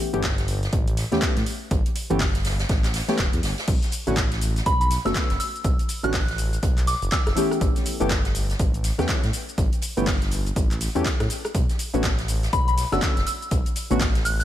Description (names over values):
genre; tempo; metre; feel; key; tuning
deep house; 122 BPM; 4/4; swing 60% on 16ths; unclear; A4 = 440 Hz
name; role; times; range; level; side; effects
warm analog keys; stabs; 0.0-14.0 s; D3 to G4; -26 LUFS; left 1 dB; chorus, sidechain pumping, low-pass filter, ping-pong delay
smooth gliding synth bass; bass; 0.1-14.4 s; E1 to A2; -26 LUFS; equal; tube saturation, sidechain pumping
deep house drum kit; drums; 0.1-14.4 s; crash cymbal, handclaps, hi-hat, rim click, shaker; -30 LUFS; equal; overdrive, small room ambience
electronic kick drum; drums; 0.2-14.1 s; none; -24 LUFS; equal; small room ambience
soft-mallet drum kit; drums; 0.2-14.4 s; hi-hat, snare drum; -35 LUFS; right 1 dB; high-pass filter on hats, small room ambience, high-pass filter on snare, high-pass filter on room
soft synth bell; melody; 4.7-7.4, 12.5-14.4 s; B5 to F#6; -27 LUFS; equal; chorus, phaser, tape echo
room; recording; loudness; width
digital ambience; none; -21 LUFS; side -12 dB against mid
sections
0.0-14.4 A section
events
none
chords
0.0 A9; 3.7 Bm7; 7.4 A9; 11.5 Bm9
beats
0.23 0.73 1.22 | 1.71 2.20 2.69 3.19 | 3.68 4.17 4.66 5.15 | 5.64 6.14 6.63 7.12 | 7.61 8.10 8.60 9.09 | 9.58 10.07 10.56 11.05 | 11.55 12.04 12.53 13.02 | 13.51 14.01